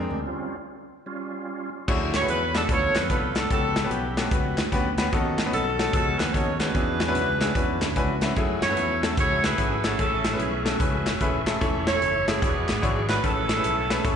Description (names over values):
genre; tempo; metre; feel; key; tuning
uptempo gospel; 148 BPM; 4/4; swing 64% on 8ths; A major; A4 = 440 Hz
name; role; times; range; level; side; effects
bright upright piano; accompaniment; 0.0-14.2 s; A2 to B5; -28 LUFS; left 3 dB; slapback echo
bright tonewheel organ; sustained chords; 0.0-1.7, 8.4-14.2 s; G3 to E6; -34 LUFS; right 3 dB; fast rotary speaker, chorus vibrato
modern bright fingered electric bass; bass; 0.0-14.2 s; D#1 to F#2; -30 LUFS; equal; none
modern studio drum kit; drums; 1.9-14.2 s; crash cymbal, hi-hat, kick drum, snare drum; -26 LUFS; equal; none
group handclap; percussion; 2.1-14.0 s; none; -38 LUFS; left 3 dB; none
bright saxophone section; melody; 2.2-14.2 s; A3 to C#5; -26 LUFS; right 2 dB; slapback echo
room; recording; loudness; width
light reverb, small room ambience; live gig heard through the venue's PA, recital hall reverb, nothing above 10.4 kHz; -22 LUFS; side -8 dB against mid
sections
0.0-1.9 A section; 1.9-14.2 B section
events
tonewheel organ solo 0.0-1.9; stop 0.3-1.9; upright piano fill 7.6-8.4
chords
0.3 Dbmaj7#11/G; 1.1 Db; 1.9 Dmaj9#11; 2.7 Dm6; 3.5 A13; 5.1 B9; 6.7 E13; 8.4 F#m9; 10.0 Amaj7; 11.6 A/E; 12.4 E13; 13.2 Amaj9